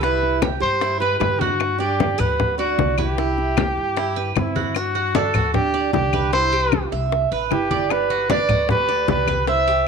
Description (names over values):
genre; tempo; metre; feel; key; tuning
latin, Cuban son and guajira; 152 BPM; 4/4; straight; G major; A4 = 440 Hz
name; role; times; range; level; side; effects
warm trumpet; melody; 0.0-9.9 s; E4 to E5; -21 LUFS; equal; none
nylon-string guitar; second line; 0.0-9.9 s; C4 to C5; -29 LUFS; right 9 dB; none
Cuban tres; arpeggios; 0.0-9.9 s; D4 to F#5; -26 LUFS; right 10 dB; none
upright bass; bass; 0.0-9.9 s; G1 to G2; -27 LUFS; left 2 dB; none
bongos; percussion; 0.0-9.7 s; none; -26 LUFS; left 14 dB; none
congas; percussion; 0.0-9.9 s; none; -26 LUFS; left 2 dB; none
claves; percussion; 0.4-9.5 s; none; -30 LUFS; left 18 dB; none
room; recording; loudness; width
moderate echo chamber reverb, RT60 1.2 s, small room reverb; 1960s-style stereo with parts hard left and right; -18 LUFS; side -6 dB against mid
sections
0.0-4.8 A section; 4.8-9.9 B section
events
none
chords
0.0 Cmaj7; 1.6 Gmaj7; 3.2 Cmaj7; 4.8 Gmaj7; 6.3 Cmaj7; 7.9 Gmaj7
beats
| 0.03 0.42 0.82 1.21 | 1.60 2.00 2.39 2.78 | 3.18 3.57 3.96 4.36 | 4.75 5.15 5.54 5.93 | 6.33 6.72 7.12 7.51 | 7.90 8.30 8.69 9.08 | 9.48 9.87